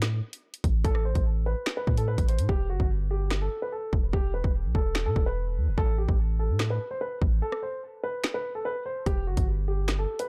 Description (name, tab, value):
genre	hip hop, drill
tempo	146 BPM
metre	4/4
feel	half-time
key	unclear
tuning	A4 = 440 Hz
part	long sustained 808-style bass	bass	0.0-10.1 s	E1 to B2	-29 LUFS	equal	none
part	drill drum kit	drums	0.0-10.3 s	finger snaps, hi-hat, kick drum, rim click, snare drum	-29 LUFS	equal	none
part	dark concert grand piano	melody	0.8-10.3 s	F#4 to C5	-35 LUFS	equal	low-pass filter, tape echo
room	little or no reverb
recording	dark, warm production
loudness	-28 LUFS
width	mono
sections	0.0-10.3 A section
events	break 0.0-0.8, 7.4-9.1; hi-hats muted 2.5-9.1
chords	0.0 Asus2; 2.5 Em; 5.8 Asus2; 9.1 Em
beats	0.02 0.43 | 0.85 1.26 1.67 2.08 | 2.49 2.90 3.31 3.72 | 4.13 4.54 4.96 5.37 | 5.78 6.19 6.60 7.01 | 7.42 7.83 8.24 8.65 | 9.06 9.48 9.89